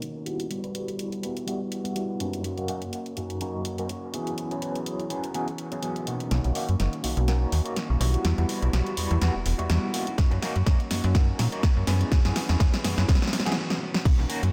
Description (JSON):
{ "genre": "filtered disco house", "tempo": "124 BPM", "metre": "4/4", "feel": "swing 55% on 16ths", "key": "B major", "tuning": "A4 = 441 Hz", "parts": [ { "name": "electric guitar at the edge of break-up", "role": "riff", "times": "0.0-14.5 s", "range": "D#3 to F#4", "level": "-37 LUFS", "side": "equal", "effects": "lush chorus, sidechain pumping, low-pass filter" }, { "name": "house drum kit", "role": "drums", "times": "0.0-14.5 s", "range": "crash cymbal, hi-hat, snare drum", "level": "-33 LUFS", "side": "equal", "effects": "sidechain pumping on hats, small room ambience, sidechain pumping on cymbals, dub echo" }, { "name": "overdriven tine electric piano", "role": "accompaniment", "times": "0.3-14.4 s", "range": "F#2 to G#4", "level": "-34 LUFS", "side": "equal", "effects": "medium tremolo, phaser, sidechain pumping, low-pass filter, dub echo" }, { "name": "slap-like FM bass", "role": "bass", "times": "6.3-14.5 s", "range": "E1 to A#2", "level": "-26 LUFS", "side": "equal", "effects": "sidechain pumping, low-pass filter" }, { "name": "electronic kick drum", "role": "drums", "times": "10.2-14.2 s", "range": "none", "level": "-24 LUFS", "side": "equal", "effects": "small room ambience" } ], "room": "moderate echo chamber reverb, RT60 1.6 s, digital ambience", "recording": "echo-heavy mix", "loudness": "-26 LUFS", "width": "mono", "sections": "0.0-6.3 A section; 6.3-14.1 B section", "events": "filter sweep 0.0-6.3, 6.3-14.1; build-up 6.3-14.1; drum fill 6.3-13.6, 13.7-14.1; break 13.6-14.1", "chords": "0.0 Bmaj9; 0.5 Emadd9; 2.4 D#m7/F#; 4.1 F#7sus4; 6.3 Bmaj9; 8.2 Emadd9; 10.2 D#m7/F#; 11.9 F#7sus4" }